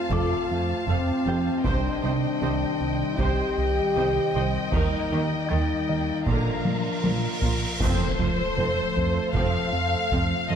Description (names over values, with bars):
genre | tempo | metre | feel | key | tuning
cinematic, hybrid orchestral and electronic film score | 78 BPM | 4/4 | straight | unclear | A4 = 441 Hz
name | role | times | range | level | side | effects
warm symphonic violin section | second line | 0.0-10.6 s | Bb4 to Bb5 | -31 LUFS | left 2 dB | none
dark French horn section | sustained chords | 0.0-10.6 s | F3 to A4 | -29 LUFS | left 3 dB | none
warm analog pad | sustained chords | 0.0-10.6 s | Eb3 to Eb5 | -32 LUFS | equal | chorus
felt-muted upright piano | texture | 0.0-10.6 s | G4 to A6 | -39 LUFS | left 2 dB | ping-pong delay
warm symphonic viola section | accompaniment | 0.1-10.6 s | D3 to F5 | -34 LUFS | right 2 dB | none
fat analog bass | riff | 0.1-10.6 s | C2 to F3 | -29 LUFS | right 2 dB | none
bright symphonic double bass section | bass | 0.1-10.6 s | F1 to Eb2 | -33 LUFS | right 4 dB | none
rich symphonic cello section | bass | 0.1-10.6 s | F2 to Eb3 | -34 LUFS | right 3 dB | none
solo taiko drums | drums | 0.1-10.5 s | none | -29 LUFS | equal | none
cymbal swell and impact | sound effects | 6.5-10.6 s | none | -33 LUFS | equal | none
rich symphonic violin section | melody | 7.0-10.6 s | Bb4 to F5 | -30 LUFS | left 4 dB | none
room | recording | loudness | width
moderate scoring stage reverb, RT60 1.5 s | none | -22 LUFS | side -8 dB against mid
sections
0.0-7.8 A section; 7.8-10.6 A section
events
cymbal swell 6.5-7.8; drum fill 6.7-7.8; impact 7.8-10.6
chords
0.0 F; 1.7 Cmadd9; 4.7 Eb; 6.3 Bb; 7.8 F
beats
0.12 0.89 | 1.66 2.42 3.19 3.96 | 4.73 5.50 6.27 7.04 | 7.81 8.58 9.35 10.12